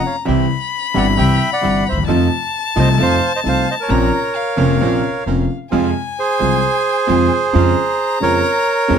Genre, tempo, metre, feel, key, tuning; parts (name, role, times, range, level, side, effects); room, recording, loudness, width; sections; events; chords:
tango; 132 BPM; 4/4; rubato; F minor from 5.7 s; A4 = 439 Hz
bandoneon; melody; 0.0-9.0 s; Ab4 to G5; -18 LUFS; right 3 dB
rich violin; second line; 0.0-9.0 s; F5 to Cb6; -22 LUFS; left 7 dB
warm concert grand piano; accompaniment; 0.3-9.0 s; F1 to F4; -18 LUFS; equal
bandoneon; stabs; 0.3-9.0 s; C4 to Bb4; -26 LUFS; right 6 dB
upright bass; bass; 0.3-9.0 s; F1 to F2; -18 LUFS; equal
little or no reverb; close, detailed microphones; -14 LUFS; side -7 dB against mid
0.0-5.7 A section; 5.7-9.0 B section
0.3 C; 2.1 F7; 3.9 Bbmadd9; 5.7 Fm; 7.5 Dbmaj7/F